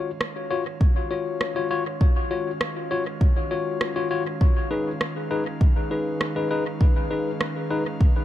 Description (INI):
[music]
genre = ambient dub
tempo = 100 BPM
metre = 4/4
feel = straight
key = Eb minor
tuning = A4 = 440 Hz
[part]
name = airy breathy pad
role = sustained chords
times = 0.0-8.2 s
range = Eb3 to F5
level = -34 LUFS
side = right 2 dB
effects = chorus
[part]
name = tine electric piano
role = stabs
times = 0.0-7.8 s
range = Eb4 to Db5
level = -26 LUFS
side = left 4 dB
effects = dub echo
[part]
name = electronic rim click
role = drums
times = 0.2-7.5 s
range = none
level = -30 LUFS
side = right 1 dB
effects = studio reverb, dub echo
[part]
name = electronic kick drum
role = drums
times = 0.8-8.1 s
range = none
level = -19 LUFS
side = equal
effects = studio reverb
[sound]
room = light reverb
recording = dark, warm production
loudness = -22 LUFS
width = side -12 dB against mid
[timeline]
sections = 0.0-8.2 A section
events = fade-in on analog synth pad 0.0-8.2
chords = 0.0 Ebm7; 4.4 Fm7b5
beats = 0.21 0.81 1.41 | 2.01 2.61 3.21 3.81 | 4.41 5.01 5.61 6.21 | 6.81 7.41 8.01